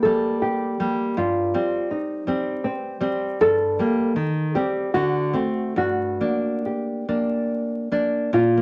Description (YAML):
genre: romantic duo for nylon-string guitar and classical guitar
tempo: 68-84 BPM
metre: 3/4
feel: rubato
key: G minor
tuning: A4 = 439 Hz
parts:
  - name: nylon-string guitar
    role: melody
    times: 0.0-8.6 s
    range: C4 to A4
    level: -25 LUFS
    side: equal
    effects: none
  - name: nylon-string guitar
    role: accompaniment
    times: 0.0-8.6 s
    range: G2 to D4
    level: -26 LUFS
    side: equal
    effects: none
room: moderate club reverb, RT60 0.7 s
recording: vinyl crackle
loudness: -23 LUFS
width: mono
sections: 0.0-8.4 A section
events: none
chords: 0.0 Gm; 1.2 Cm/G; 3.4 Gm; 4.2 Cm/Eb; 5.0 D7; 5.8 Gm